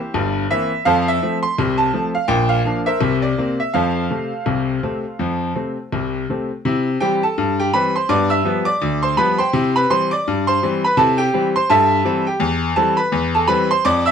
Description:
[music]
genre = ragtime piano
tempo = 83 BPM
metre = 2/4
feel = swing 58% on 16ths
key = F major, C major from 6.7 s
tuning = A4 = 440 Hz
[part]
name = bright grand piano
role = solo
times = 0.0-14.1 s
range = G1 to E6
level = -16 LUFS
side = equal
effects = none
[sound]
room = light reverb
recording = none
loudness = -16 LUFS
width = side -7 dB against mid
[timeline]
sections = 0.0-6.7 A section; 6.7-14.1 B section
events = none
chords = 0.0 C7; 0.9 F; 2.3 Bb; 3.0 C9; 3.7 F; 6.7 C; 8.1 G7; 9.5 C; 12.4 C/E

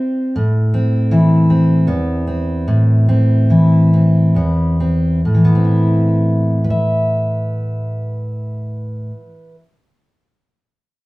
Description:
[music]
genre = folk, solo fingerstyle acoustic guitar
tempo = 43-53 BPM (dotted quarters)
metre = 6/8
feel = straight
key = A minor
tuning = A4 = 437 Hz
[part]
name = fingerpicked steel-string acoustic guitar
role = solo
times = 0.0-9.6 s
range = E2 to E5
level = -13 LUFS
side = equal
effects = none
[sound]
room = wet studio reverb, RT60 0.6 s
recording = heard from further back in the room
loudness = -12 LUFS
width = side -20 dB against mid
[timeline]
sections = 0.3-5.2 A section; 5.2-8.0 B section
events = slowing down 0.3-5.2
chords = 0.3 Amadd9

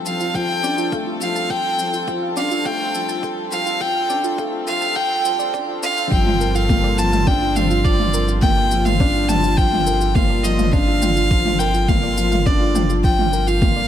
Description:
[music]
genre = piano and strings electronica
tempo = 104 BPM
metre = 4/4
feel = straight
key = unclear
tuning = A4 = 440 Hz
[part]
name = dark chamber string section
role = sustained chords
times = 0.0-13.9 s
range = G3 to A4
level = -27 LUFS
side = left 1 dB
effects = none
[part]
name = felt-muted upright piano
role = riff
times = 0.0-13.9 s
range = F3 to D4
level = -24 LUFS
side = left 2 dB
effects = none
[part]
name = clear violin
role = melody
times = 0.1-13.9 s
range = D5 to A5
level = -21 LUFS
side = equal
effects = ping-pong delay
[part]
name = electronic shaker and toms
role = drums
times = 0.1-13.7 s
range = none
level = -25 LUFS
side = right 1 dB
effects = none
[part]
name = soft round pluck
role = arpeggios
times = 0.2-13.8 s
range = F4 to D6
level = -29 LUFS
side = right 4 dB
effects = chorus, sidechain pumping, ping-pong delay
[part]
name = electronic kick drum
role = drums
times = 0.3-13.7 s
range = none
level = -19 LUFS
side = equal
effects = none
[part]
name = round analog bass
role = bass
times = 6.1-13.9 s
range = G1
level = -22 LUFS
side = equal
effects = sidechain pumping
[sound]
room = light reverb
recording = high-pass filter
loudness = -16 LUFS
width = side -10 dB against mid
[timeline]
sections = 0.0-6.1 A section; 6.1-13.9 B section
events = build-up 0.0-6.1; filter sweep on synth arpeggio sound 0.0-6.1; drop 6.1-13.9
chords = 0.0 Dm; 6.1 Gm7

